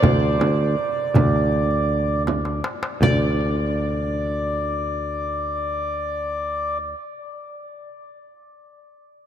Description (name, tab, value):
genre	Arabic maqam ensemble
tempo	80 BPM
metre	4/4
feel	straight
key	unclear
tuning	A4 = 440 Hz
part	qanun	melody	0.0-7.0 s	C5 to D5	-32 LUFS	equal	tape echo
part	mellow accordion	second line	0.0-6.8 s	D5	-25 LUFS	right 1 dB	none
part	picked electric bass	bass	0.0-6.9 s	D2	-23 LUFS	equal	none
part	darbuka	percussion	0.0-3.4 s	none	-25 LUFS	left 1 dB	none
part	frame drum	percussion	0.0-3.4 s	none	-27 LUFS	right 4 dB	none
room	wet cathedral reverb, RT60 5.3 s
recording	in a vast, echoing space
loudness	-20 LUFS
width	side -10 dB against mid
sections	0.0-3.0 A section; 3.0-6.0 B section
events	drum fill 2.3-3.0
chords	none